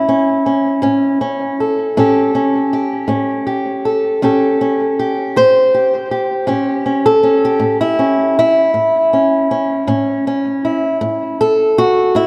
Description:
acoustic country blues, solo or duo; 53 BPM (dotted quarters); 12/8; straight; A mixolydian; A4 = 437 Hz
fingerpicked old ladder-braced acoustic guitar; solo; 0.0-12.3 s; A2 to C5; -15 LUFS; equal; analog delay
wet plate reverb, RT60 2.7 s; dreamy mix soaked in reverb; -15 LUFS; mono
0.0-12.3 A section
0.0 A7

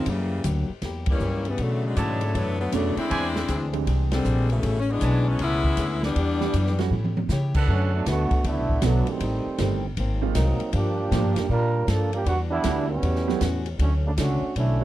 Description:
jazz, big band swing; 157 BPM; 4/4; swing 65% on 8ths; A major, D major from 7.7 s; A4 = 440 Hz
edgy saxophone section; melody; 0.0-6.8 s; B2 to E4; -26 LUFS; left 3 dB
clear grand piano; accompaniment; 0.0-0.1, 2.7-14.8 s; D3 to G4; -29 LUFS; right 16 dB
upright bass; bass; 0.0-14.8 s; G1 to C#3; -24 LUFS; equal
picked plugged-in swing-style acoustic guitar; accompaniment; 0.1-14.8 s; G2 to C#5; -34 LUFS; left 5 dB
open jazz drum kit; drums; 0.1-14.7 s; crash cymbal, hi-hat, kick drum, ride cymbal, snare drum, toms; -30 LUFS; equal
clear trumpet section; stabs; 2.0-8.0 s; D4 to A5; -31 LUFS; right 3 dB
dark trombone section; second line; 7.7-14.8 s; C#3 to Bb4; -27 LUFS; right 3 dB
little or no reverb; dry, close 1970s-style studio recording; -21 LUFS; side -14 dB against mid
0.0-7.7 A section; 7.7-14.8 B section
band accent 1.0, 4.1; drum fill 6.9-7.3; trombone section solo 7.7-14.8
0.1 F#7b9; 1.6 Bm11; 3.1 E7alt; 4.6 Amaj9; 6.2 Em7; 6.9 A7; 7.7 D6; 9.2 Am7b5; 10.0 G#9; 10.7 Gm7; 12.3 Em9; 13.0 A13; 13.8 Dmaj7

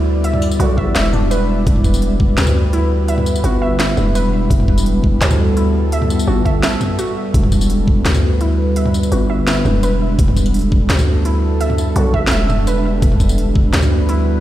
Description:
half-time drum and bass; 169 BPM; 4/4; half-time; E minor; A4 = 440 Hz
deep dark ambient pad; sustained chords; 0.0-14.4 s; G3 to D5; -20 LUFS; equal; chorus, built-in reverb, sidechain pumping
warbly dusty pluck; arpeggios; 0.0-14.4 s; D4 to E5; -25 LUFS; right 3 dB; chorus, digital delay
growling 808-style bass; bass; 0.0-14.4 s; E1 to D2; -16 LUFS; equal
drum and bass drum kit; drums; 0.2-14.2 s; hi-hat, snare drum, tambourine, toms; -21 LUFS; equal
electronic kick drum; drums; 0.8-2.3, 4.5-8.0, 10.2-13.6 s; -15 LUFS; equal
light reverb; played on a big sound system in a bare room, large studio reverb; -13 LUFS; side -13 dB against mid
0.0-14.4 A section
break 6.6-7.3
0.0 Em

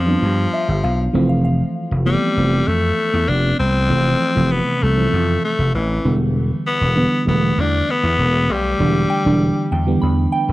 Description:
pop; 98 BPM; 4/4; straight; A4 = 440 Hz
raspy alto saxophone; melody; 0.0-9.7 s; E3 to D4; -20 LUFS; left 2 dB
mellow FM electric piano; accompaniment; 0.0-10.5 s; C3 to F4; -20 LUFS; right 1 dB; chorus
vintage slap bass; bass; 0.0-10.5 s; E1 to G2; -18 LUFS; equal
soft synth bell; second line; 0.5-1.9, 9.1-10.5 s; E5 to B5; -25 LUFS; equal; chorus, phaser, tape echo
light reverb; dry, close 1970s-style studio recording; -15 LUFS; side -17 dB against mid
0.0-10.5 A section
0.0 G7; 1.1 Fmaj7; 6.0 Em7

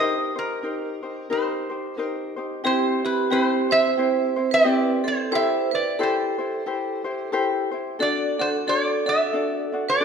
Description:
Hawaiian; 90 BPM; 4/4; swing 59% on 8ths; C major; A4 = 439 Hz
metal-body resonator slide guitar; melody; 0.0-10.0 s; Bb4 to E5; -24 LUFS; equal
ukulele; accompaniment; 0.0-10.0 s; C4 to D5; -24 LUFS; left 2 dB
vibraphone with hard mallets; second line; 2.6-10.0 s; G4 to C5; -26 LUFS; right 6 dB
wet recital hall reverb, RT60 1.5 s; minimal, uncompressed stereo recording; -21 LUFS; side -6 dB against mid
0.0-2.6 A section; 2.6-10.0 B section
0.0 Cm7; 2.6 C; 5.3 Am7; 8.0 D

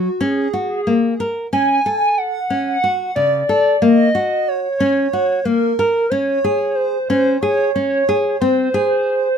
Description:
contemporary instrumental, contemporary; 183 BPM (eighths); 7/8; straight; Gb lydian; A4 = 436 Hz
pure sine lead; melody; 0.0-9.4 s; Gb4 to Ab5; -17 LUFS; right 2 dB; chorus, tremolo
nylon-string guitar; arpeggios; 0.0-9.3 s; C#3 to Bb4; -18 LUFS; left 2 dB
little or no reverb; close, detailed microphones; -15 LUFS; side -7 dB against mid
0.0-9.4 A section
0.0 Gb; 1.5 Dmaj7; 3.8 Ebm7; 6.1 Db5; 8.4 Ab

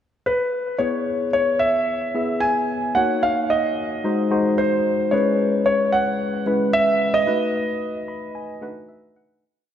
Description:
pop; 111 BPM; 4/4; straight; E major; A4 = 440 Hz
warm concert grand piano; melody; 0.3-9.1 s; B4 to G#5; -21 LUFS; equal; analog delay
tine electric piano; accompaniment; 0.8-9.4 s; G#3 to B5; -23 LUFS; left 2 dB; wide subtle chorus
wet plate reverb, RT60 3.3 s; dreamy mix soaked in reverb; -18 LUFS; side -9 dB against mid
0.0-0.8 pickup bar; 0.8-9.4 verse
fade-out 7.3-9.4; tine electric piano fill 7.8-9.4
0.0 N.C.; 0.8 E6; 3.0 D#m7; 4.0 G#7; 5.1 C#m7; 7.3 B7

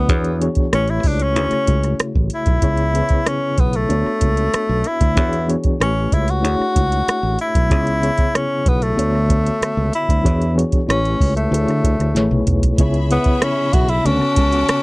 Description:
lush 1970s-style soul; 95 BPM; 4/4; straight; A4 = 440 Hz
breathy tenor saxophone; melody; 0.0-14.8 s; A3 to F#4; -20 LUFS; left 1 dB
reed electric piano; accompaniment; 0.0-14.8 s; C#3 to C#5; -22 LUFS; left 1 dB; fast tremolo
fingered electric bass; bass; 0.0-14.7 s; A1 to D3; -20 LUFS; equal
soft vintage rhythm box; drums; 0.1-14.8 s; hi-hat, kick drum, rim click, snare drum, toms; -18 LUFS; right 1 dB
bright studio string section; second line; 12.8-14.8 s; F#4 to D6; -27 LUFS; equal; slapback echo
little or no reverb; dry, close 1970s-style studio recording; -15 LUFS; side -23 dB against mid
0.0-12.8 A section; 12.8-14.8 B section
drum fill 12.1-12.8; tenor saxophone solo 12.8-14.8
0.1 E13; 0.7 A7; 1.4 Dmaj9#11 (rootless); 2.6 C#m7; 3.9 Bm9; 5.2 E13; 5.8 A7; 6.4 Dmaj9#11; 7.7 C#m7; 9.0 Bm9/D; 10.2 E13; 10.9 A7; 11.5 Dmaj9#11; 12.1 Amaj9; 12.8 C#m7; 14.1 Bm9

